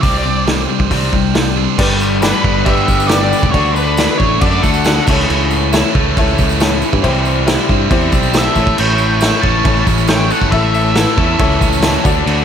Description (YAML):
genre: classic rock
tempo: 137 BPM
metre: 4/4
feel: straight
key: unclear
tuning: A4 = 440 Hz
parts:
  - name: octave-fuzz lead guitar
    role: melody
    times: 0.0-5.0, 8.4-12.0 s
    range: B4 to A5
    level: -20 LUFS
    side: equal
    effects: wah, distortion, slapback echo
  - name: cranked stack guitar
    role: riff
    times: 0.0-12.4 s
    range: G2 to D4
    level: -19 LUFS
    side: left 10 dB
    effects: overdrive, slapback echo
  - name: distorted electric guitar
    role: riff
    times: 0.0-12.4 s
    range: G2 to E4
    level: -19 LUFS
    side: right 12 dB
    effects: overdrive
  - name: modern bright picked electric bass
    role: bass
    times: 0.0-12.4 s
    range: E1 to G2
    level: -18 LUFS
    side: right 1 dB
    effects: none
  - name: vintage drum kit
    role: drums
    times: 0.0-12.4 s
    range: crash cymbal, hi-hat, kick drum, snare drum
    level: -16 LUFS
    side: right 1 dB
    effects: none
  - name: clear upright piano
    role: accompaniment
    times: 1.8-12.4 s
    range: E4 to E5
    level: -22 LUFS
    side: left 3 dB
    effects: none
  - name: tambourine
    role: percussion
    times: 1.9-12.4 s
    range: none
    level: -34 LUFS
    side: left 4 dB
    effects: none
  - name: octave-fuzz lead guitar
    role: second line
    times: 2.2-5.0, 8.4-12.0 s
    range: D4 to C#5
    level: -23 LUFS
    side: right 2 dB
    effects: distortion, slapback echo
room: moderate concert hall reverb, RT60 2.1 s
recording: big arena sound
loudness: -11 LUFS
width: side -8 dB against mid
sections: 0.0-1.8 A section; 1.8-12.4 B section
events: drum fill 8.6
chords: 0.0 Csus2; 1.8 G; 3.5 D; 5.1 A/C#; 7.0 C; 8.6 A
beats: | 0.03 0.47 0.91 1.35 | 1.79 2.23 2.67 3.11 | 3.54 3.98 4.42 4.85 | 5.29 5.73 6.16 6.60 | 7.03 7.47 7.90 8.34 | 8.78 9.21 9.65 10.09 | 10.52 10.96 11.40 11.83 | 12.27